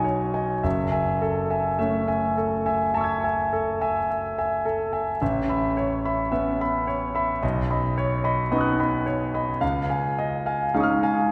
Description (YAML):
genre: classical, impressionist solo piano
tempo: 54 BPM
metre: 4/4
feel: rubato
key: F# dorian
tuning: A4 = 443 Hz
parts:
  - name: clear grand piano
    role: solo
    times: 0.0-11.3 s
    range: F#1 to G#6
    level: -24 LUFS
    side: equal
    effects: none
room: wet concert hall reverb, RT60 2.0 s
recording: recorded in a church or concert hall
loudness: -24 LUFS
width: mono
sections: 0.0-11.3 A section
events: none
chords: 0.0 B69; 0.7 F#m9; 5.2 Aadd9; 7.4 Badd9; 9.6 C#add9